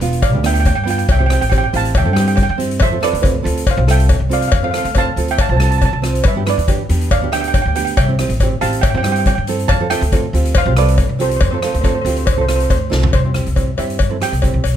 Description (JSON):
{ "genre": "calypso", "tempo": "139 BPM", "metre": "4/4", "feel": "straight", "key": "C major", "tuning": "A4 = 440 Hz", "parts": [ { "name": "steel pan", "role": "melody", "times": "0.0-14.6 s", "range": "A4 to A5", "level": "-20 LUFS", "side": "right 5 dB", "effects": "none" }, { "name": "nylon-string guitar", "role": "accompaniment", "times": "0.0-14.6 s", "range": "B3 to C5", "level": "-22 LUFS", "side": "right 5 dB", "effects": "none" }, { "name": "upright bass", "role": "bass", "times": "0.0-14.8 s", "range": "E1 to G2", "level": "-17 LUFS", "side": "left 1 dB", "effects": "none" }, { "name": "street-band drum kit", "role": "drums", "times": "0.0-14.8 s", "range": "hi-hat, kick drum, rim click, snare drum, toms", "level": "-18 LUFS", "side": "left 1 dB", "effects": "none" }, { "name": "cowbell", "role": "percussion", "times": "0.2-14.7 s", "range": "none", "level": "-23 LUFS", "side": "left 9 dB", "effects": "none" } ], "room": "little or no reverb", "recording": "close, detailed microphones", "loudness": "-13 LUFS", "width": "side -10 dB against mid", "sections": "0.0-13.1 A section; 13.1-14.8 B section", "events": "drum fill 12.9", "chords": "0.0 G; 1.1 C; 2.8 F; 6.2 G; 8.0 C; 9.7 F; 13.1 C" }